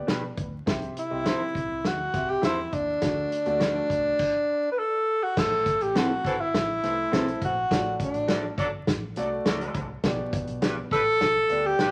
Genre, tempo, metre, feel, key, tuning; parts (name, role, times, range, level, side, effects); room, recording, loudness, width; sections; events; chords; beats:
uptempo 1960s-style soul; 102 BPM; 4/4; straight; D mixolydian; A4 = 440 Hz
warm grand piano; accompaniment; 0.0-11.9 s; A2 to E5; -37 LUFS; equal
electric guitar through a small old amp; stabs; 0.1-11.9 s; C4 to D5; -34 LUFS; equal
vintage muted fingered electric bass; bass; 0.1-11.9 s; G1 to B2; -42 LUFS; equal
natural country drum kit; drums; 0.1-11.9 s; crash cymbal, hi-hat, kick drum, snare drum; -31 LUFS; equal
breathy tenor saxophone; melody; 1.0-11.9 s; D4 to B4; -27 LUFS; equal
mellow horn section; second line; 5.9-11.9 s; E3 to B4; -36 LUFS; equal
moderate large studio reverb, RT60 1.2 s; vinyl crackle; -26 LUFS; mono
0.0-5.4 A section; 5.4-11.9 B section
0.0 G; 0.7 C; 3.0 D; 5.4 Am; 7.7 D; 10.0 G
0.08 | 0.67 1.26 1.84 2.43 | 3.02 3.61 4.19 4.78 | 5.36 5.95 6.53 7.12 | 7.70 8.29 8.87 9.46 | 10.04 10.62 11.21 11.79